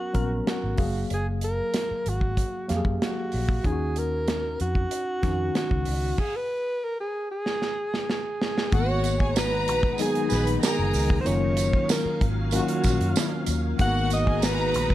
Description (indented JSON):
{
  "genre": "lush 1970s-style soul",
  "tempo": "94 BPM",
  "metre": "4/4",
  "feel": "straight",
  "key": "G# dorian",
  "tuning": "A4 = 440 Hz",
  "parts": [
    { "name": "mellow alto saxophone", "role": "melody", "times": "0.0-14.9 s", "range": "F#4 to F#5", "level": "-29 LUFS", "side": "equal", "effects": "none" },
    { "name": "mellow tine electric piano", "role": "accompaniment", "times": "0.0-14.9 s", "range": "D#3 to E#5", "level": "-29 LUFS", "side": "left 2 dB", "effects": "medium stereo tremolo" },
    { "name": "modern studio drum kit", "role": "drums", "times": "0.1-14.9 s", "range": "crash cymbal, hi-hat, kick drum, snare drum", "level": "-27 LUFS", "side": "right 1 dB", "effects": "none" },
    { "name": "vintage muted fingered electric bass", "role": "bass", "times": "0.2-14.9 s", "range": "F#1 to F#2", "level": "-28 LUFS", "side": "equal", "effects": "none" },
    { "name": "warm studio string section", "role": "second line", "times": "8.7-14.9 s", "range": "F#4 to B5", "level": "-30 LUFS", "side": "right 1 dB", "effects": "tape echo" },
    { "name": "soft string machine", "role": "sustained chords", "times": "8.7-14.9 s", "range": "D#3 to E#5", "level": "-35 LUFS", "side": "equal", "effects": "ensemble chorus" },
    { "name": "tambourine", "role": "percussion", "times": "9.1-14.6 s", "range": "none", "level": "-36 LUFS", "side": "right 15 dB", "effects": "none" }
  ],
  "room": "studio ambience",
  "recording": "none",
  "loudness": "-23 LUFS",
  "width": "side -14 dB against mid",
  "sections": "0.0-8.7 A section; 8.7-14.9 B section",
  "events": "stop 6.2-8.7; drum fill 7.5-8.7",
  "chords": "0.0 G#m11; 0.8 F#maj9; 3.6 D#m9; 6.2 N.C.; 8.7 G#m9; 11.3 D#m9/F#; 13.8 G#m9"
}